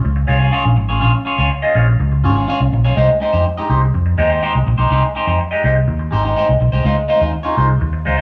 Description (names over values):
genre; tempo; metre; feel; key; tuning
disco; 124 BPM; 4/4; straight; unclear; A4 = 441 Hz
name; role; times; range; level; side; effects
clean electric guitar; accompaniment; 0.0-8.2 s; Ab3 to Eb5; -19 LUFS; equal; phaser
vintage muted fingered electric bass; bass; 0.0-8.2 s; Ab1 to F2; -17 LUFS; equal; none
room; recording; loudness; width
digital ambience; small room ambience; -15 LUFS; mono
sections
0.0-8.2 A section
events
none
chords
0.0 Bbm7; 3.0 Fm9 (rootless); 6.8 Dbmaj9